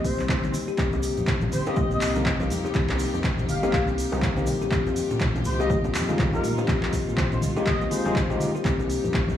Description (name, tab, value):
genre	afro house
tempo	122 BPM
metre	4/4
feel	swing 60% on 16ths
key	C minor pentatonic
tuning	A4 = 441 Hz
part	expressive synth lead	melody	0.0-8.4 s	Bb4 to F5	-33 LUFS	left 1 dB	ensemble chorus, tape echo
part	kalimba	arpeggios	0.0-8.8 s	G3 to G4	-29 LUFS	left 4 dB	sidechain pumping, tape echo
part	smooth synth bass	bass	0.0-9.4 s	F1 to Bb2	-30 LUFS	equal	sidechain pumping
part	deep house drum kit	drums	0.0-9.3 s	handclaps, hi-hat	-32 LUFS	equal	none
part	electronic kick drum	drums	0.0-9.3 s	none	-26 LUFS	equal	none
part	swell	sound effects	0.0-0.8 s	none	-35 LUFS	equal	none
part	tube shaker	percussion	0.1-9.4 s	none	-44 LUFS	right 4 dB	none
part	congas	percussion	0.2-9.4 s	none	-33 LUFS	left 2 dB	none
part	rich studio string section	sustained chords	0.8-9.4 s	C3 to G4	-34 LUFS	left 1 dB	sidechain pumping
part	bongos	percussion	0.9-9.4 s	none	-35 LUFS	equal	none
part	overdriven tine electric piano	stabs	1.7-8.5 s	Ab3 to Bb4	-31 LUFS	left 1 dB	sidechain pumping, tape echo
room	light reverb, small room ambience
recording	played on a big sound system in a bare room, large studio reverb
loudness	-22 LUFS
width	side -10 dB against mid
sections	0.0-9.4 A section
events	swell 0.0-0.8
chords	0.0 Fsus2 (rootless); 0.8 Cm7; 4.7 Fm9; 8.7 Cm7